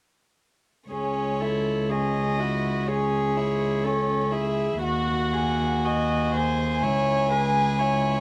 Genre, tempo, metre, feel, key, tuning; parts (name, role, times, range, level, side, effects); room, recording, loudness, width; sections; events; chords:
classical, slow romantic movement for string quartet; 61 BPM; 4/4; rubato; C# minor; A4 = 438 Hz
dark violin; melody; 0.9-8.2 s; C#5 to G#5; -32 LUFS; equal
rich violin; second line; 0.9-8.2 s; C#4 to G#4; -32 LUFS; equal
warm viola; accompaniment; 0.9-8.2 s; F#4 to D#5; -30 LUFS; equal
warm cello; bass; 0.9-8.2 s; C#2 to D#2; -29 LUFS; equal
moderate recital hall reverb, RT60 1.3 s; -25 LUFS; mono
0.9-8.2 A section
0.9 C#m; 4.8 G#5/D#; 6.8 C#m